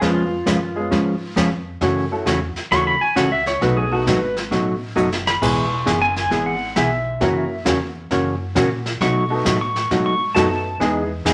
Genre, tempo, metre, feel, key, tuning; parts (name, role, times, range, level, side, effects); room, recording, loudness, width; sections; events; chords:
country, western swing; 133 BPM; 4/4; swing 66% on 8ths; E major; A4 = 440 Hz
pedal steel guitar; second line; 0.0-10.8 s; E#4 to C#6; -24 LUFS; equal
clear upright piano; accompaniment; 0.0-11.1 s; G#3 to B4; -28 LUFS; equal
hollow-body jazz guitar; accompaniment; 0.0-11.3 s; B2 to B4; -22 LUFS; equal
upright bass; bass; 0.0-11.3 s; E1 to B2; -29 LUFS; equal
jazz brush drum kit; drums; 0.0-11.3 s; brushed snare drum, crash cymbal, hi-hat, kick drum, snare drum; -29 LUFS; equal
wet studio reverb, RT60 0.7 s; -20 LUFS; mono
0.0-11.3 A section
pedal steel guitar solo 0.0-11.3; drum fill 5.0-5.4
0.0 C#7/E#; 1.8 F#m7; 3.6 B7; 5.4 E; 7.2 F#7; 9.0 B7; 10.8 Emaj7